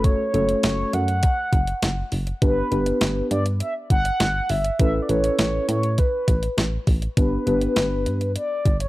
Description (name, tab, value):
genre	synth-pop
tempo	101 BPM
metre	4/4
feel	straight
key	unclear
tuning	A4 = 440 Hz
part	mellow horn-like synth lead	melody	0.0-8.9 s	B4 to F#5	-25 LUFS	equal	chorus
part	muted felt-like synth keys	accompaniment	0.0-8.2 s	A3 to B4	-24 LUFS	left 1 dB	chorus
part	solid FM bass	bass	0.0-8.9 s	F#1 to A2	-25 LUFS	equal	none
part	clean 12-bit digital drum machine	drums	0.0-8.9 s	hi-hat, kick drum, snare drum	-22 LUFS	equal	overdrive
room	digital ambience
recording	dry, gritty hardware recording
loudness	-19 LUFS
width	side -18 dB against mid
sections	0.0-8.9 A section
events	none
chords	0.0 F#m; 2.4 G; 4.8 Aadd9; 7.2 G